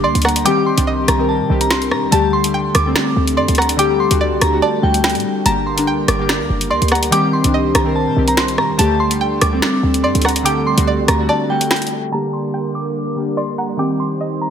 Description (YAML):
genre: hip hop, drill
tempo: 144 BPM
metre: 4/4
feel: half-time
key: G harmonic minor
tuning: A4 = 442 Hz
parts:
  - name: glassy synth bell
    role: melody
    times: 0.0-14.5 s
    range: G5 to D6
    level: -21 LUFS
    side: equal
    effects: chorus, tremolo, ping-pong delay
  - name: string-like resonator pluck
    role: second line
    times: 0.0-14.5 s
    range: D5 to A5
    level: -24 LUFS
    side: right 3 dB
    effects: chorus, ping-pong delay
  - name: glassy digital keys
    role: accompaniment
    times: 0.0-14.5 s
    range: D3 to Bb4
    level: -18 LUFS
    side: left 2 dB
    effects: chorus
  - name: airy breathy pad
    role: sustained chords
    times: 0.0-14.5 s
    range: D3 to C5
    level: -25 LUFS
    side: right 1 dB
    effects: chorus
  - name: short 808-style bass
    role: bass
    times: 0.0-11.3 s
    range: F#1 to C3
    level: -20 LUFS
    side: right 1 dB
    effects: none
  - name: drill drum kit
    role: drums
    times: 0.2-11.9 s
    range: finger snaps, hi-hat, rim click, snare drum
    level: -19 LUFS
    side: equal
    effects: none
room: light reverb, digital ambience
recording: low-pass filter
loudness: -14 LUFS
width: side -8 dB against mid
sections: 0.0-12.1 A section; 12.1-14.5 B section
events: break 11.3-12.1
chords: 0.5 Cm; 2.1 Dsus4; 5.5 Gm; 7.1 Cm; 8.8 Dsus4; 12.1 Gm; 13.8 Cm